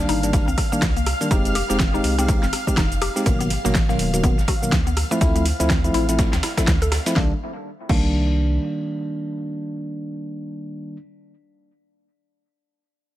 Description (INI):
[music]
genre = deep house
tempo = 123 BPM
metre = 4/4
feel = swing 59% on 16ths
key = C dorian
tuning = A4 = 440 Hz
[part]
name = tine electric piano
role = stabs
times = 0.0-11.0 s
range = Cb3 to G4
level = -24 LUFS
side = equal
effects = sidechain pumping, dub echo
[part]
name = warm sub bass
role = bass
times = 0.0-8.6 s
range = Eb1 to D2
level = -24 LUFS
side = equal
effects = tube saturation, sidechain pumping
[part]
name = string machine, violins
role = texture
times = 0.0-7.2 s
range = F5 to F6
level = -31 LUFS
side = right 1 dB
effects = ensemble chorus, sidechain pumping
[part]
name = mallet-like synth pluck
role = arpeggios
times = 0.1-8.0 s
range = A3 to A4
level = -29 LUFS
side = left 2 dB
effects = chorus, sidechain pumping, dub echo
[part]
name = deep house drum kit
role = drums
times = 0.1-8.1 s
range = crash cymbal, hi-hat, rim click, shaker, snare drum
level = -26 LUFS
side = equal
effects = small room ambience
[part]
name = dusty soul sampler-style drum kit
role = drums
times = 0.1-7.2 s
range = ride cymbal, snare drum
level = -34 LUFS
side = right 2 dB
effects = high-pass filter on snare, small room ambience, high-pass filter on cymbals, high-pass filter on room
[part]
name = electronic kick drum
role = drums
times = 0.3-8.1 s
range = none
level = -21 LUFS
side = equal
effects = overdrive, small room ambience
[sound]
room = little or no reverb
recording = none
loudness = -18 LUFS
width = side -14 dB against mid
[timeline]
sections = 0.0-7.2 A section; 7.2-11.1 B section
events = drop 0.0-7.2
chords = 0.0 Cm9; 1.3 Fm9; 3.3 Abm9; 5.0 Dm9; 7.2 Cm9